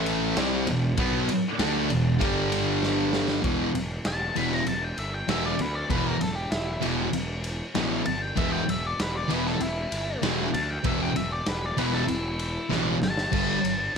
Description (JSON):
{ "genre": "garage rock duo or trio", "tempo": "97 BPM", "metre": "4/4", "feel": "straight", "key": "E minor", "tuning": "A4 = 441 Hz", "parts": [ { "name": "thick fuzz guitar", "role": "riff", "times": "0.0-13.6 s", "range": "E2 to D4", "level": "-25 LUFS", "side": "equal", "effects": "distortion" }, { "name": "fuzz picked electric bass", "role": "bass", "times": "0.0-14.0 s", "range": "E1 to D2", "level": "-32 LUFS", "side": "equal", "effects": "overdrive, tube saturation" }, { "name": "raw garage drum kit", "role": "drums", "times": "0.1-13.8 s", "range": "crash cymbal, kick drum, ride cymbal, snare drum", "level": "-31 LUFS", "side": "equal", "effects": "none" }, { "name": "octave-fuzz lead guitar", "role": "melody", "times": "4.1-14.0 s", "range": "E4 to B5", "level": "-30 LUFS", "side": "left 2 dB", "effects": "distortion" } ], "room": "light reverb", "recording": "none", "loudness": "-24 LUFS", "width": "side -6 dB against mid", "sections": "0.0-3.4 A section; 3.4-14.0 B section", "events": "drum fill 2.8-3.4, 12.7-13.3; lead electric guitar solo 3.4-14.0", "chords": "0.4 Em; 2.2 G5; 3.4 E5; 13.3 G5" }